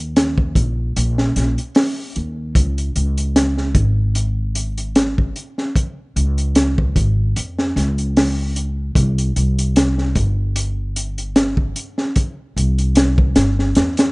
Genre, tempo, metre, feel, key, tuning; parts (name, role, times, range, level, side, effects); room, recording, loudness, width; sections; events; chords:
trip hop; 75 BPM; 4/4; swing 55% on 16ths; A4 = 439 Hz
upright bass; bass; 0.0-14.1 s; G1 to F2; -18 LUFS; equal
crunchy breakbeat drum kit; drums; 0.2-14.1 s; hi-hat, kick drum, snare drum; -17 LUFS; equal
little or no reverb; rough home demo mix, nothing above 10.3 kHz; -16 LUFS; side -29 dB against mid
0.0-14.1 A section